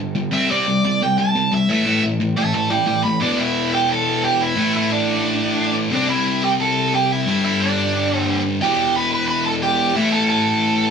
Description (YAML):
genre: punk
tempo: 178 BPM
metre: 4/4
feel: straight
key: E minor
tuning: A4 = 440 Hz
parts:
  - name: sludgy distorted guitar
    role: riff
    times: 0.0-10.9 s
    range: E2 to C4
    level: -19 LUFS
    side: left 2 dB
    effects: overdrive
  - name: high-gain lead guitar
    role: melody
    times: 0.3-10.9 s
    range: D4 to B5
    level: -20 LUFS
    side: right 3 dB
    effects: distortion
room: wet stone room reverb, RT60 0.9 s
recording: band playing live in one room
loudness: -16 LUFS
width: side -6 dB against mid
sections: 0.0-3.2 A section; 3.2-10.9 B section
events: lead electric guitar solo 0.0-3.2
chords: 0.3 C5; 1.7 A5; 3.2 Em; 4.6 A5; 5.9 C; 7.3 G5; 8.6 Em; 10.0 A5